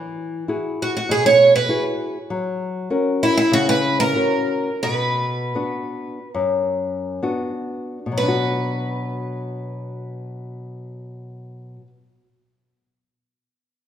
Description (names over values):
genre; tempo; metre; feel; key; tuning
fado; 62-101 BPM; 4/4; rubato; B harmonic minor; A4 = 439 Hz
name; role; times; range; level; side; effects
nylon-string guitar; accompaniment; 0.0-12.0 s; F#2 to A#4; -24 LUFS; left 3 dB; none
picked twelve-string acoustic guitar; melody; 0.8-11.9 s; E4 to C#5; -18 LUFS; right 2 dB; none
room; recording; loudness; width
moderate recital hall reverb, RT60 1.7 s; minimal, uncompressed stereo recording; -18 LUFS; side -10 dB against mid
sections
0.0-8.2 A section; 8.2-11.9 B section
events
slowing down 2.3-8.2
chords
0.0 Eadd9; 2.3 F#; 4.8 Bm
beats
0.48 1.08 1.69 | 2.29 2.89 3.51 4.15 | 4.82 5.54 6.33 7.22 | 8.16 9.10 10.04 10.98